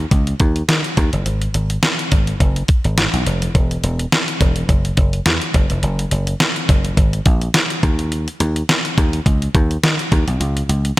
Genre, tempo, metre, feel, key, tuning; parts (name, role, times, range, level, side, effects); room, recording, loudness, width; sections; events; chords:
1980s-style pop; 105 BPM; 4/4; swing 55% on 16ths; A4 = 440 Hz
dry thumbed slap bass; bass; 0.0-10.9 s; E1 to D#3; -18 LUFS; equal
clean 12-bit digital drum machine; drums; 0.1-11.0 s; hi-hat, kick drum, snare drum; -16 LUFS; equal
light reverb, digital ambience; -15 LUFS; side -18 dB against mid
0.0-11.0 A section